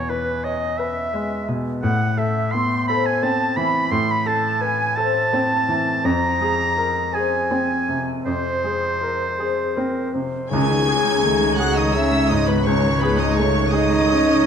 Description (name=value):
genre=cinematic, emotional film score for orchestra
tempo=52-58 BPM (dotted quarters)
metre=6/8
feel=rubato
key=C# minor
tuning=A4 = 440 Hz
part: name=clear oboe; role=second line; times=0.0-14.5 s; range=B4 to C6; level=-24 LUFS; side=right 2 dB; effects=none
part: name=flute section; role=second line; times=0.0-14.5 s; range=B4 to C6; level=-26 LUFS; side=equal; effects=none
part: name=bright baby grand piano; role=accompaniment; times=0.0-14.5 s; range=C#2 to C#5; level=-23 LUFS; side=equal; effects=none
part: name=concert harp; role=arpeggios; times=0.0-14.5 s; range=F2 to E5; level=-28 LUFS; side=left 8 dB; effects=none
part: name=warm clarinet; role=second line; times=9.4-14.5 s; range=D#4 to C5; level=-29 LUFS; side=left 3 dB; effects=none
part: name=warm symphonic violin section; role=melody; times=10.5-14.5 s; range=B5 to G#6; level=-25 LUFS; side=left 1 dB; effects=none
part: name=warm symphonic violin section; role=second line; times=10.5-14.5 s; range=B4 to G#5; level=-29 LUFS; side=left 3 dB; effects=none
part: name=warm symphonic viola section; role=accompaniment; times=10.5-14.5 s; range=C#3 to C#4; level=-27 LUFS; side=right 2 dB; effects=none
part: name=warm French horn section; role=sustained chords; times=10.5-14.5 s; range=B3 to G#4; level=-23 LUFS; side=left 3 dB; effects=none
part: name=dark symphonic double bass section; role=bass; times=10.5-14.5 s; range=C#2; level=-25 LUFS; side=right 3 dB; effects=none
part: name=warm symphonic cello section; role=bass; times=10.5-14.5 s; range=C#2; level=-27 LUFS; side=right 3 dB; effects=none
part: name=timpani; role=percussion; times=10.5-11.6 s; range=C#3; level=-27 LUFS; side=right 2 dB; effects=none
room=moderate scoring stage reverb, RT60 1.7 s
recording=none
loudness=-18 LUFS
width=side -7 dB against mid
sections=0.0-10.5 A section; 10.5-14.5 A section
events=none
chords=0.0 E; 1.8 Am; 6.0 Fm; 10.5 C#sus2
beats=0.78 | 1.83 2.87 | 3.92 4.97 | 6.04 7.13 | 8.25 9.39 | 10.51 11.59 | 12.65 13.72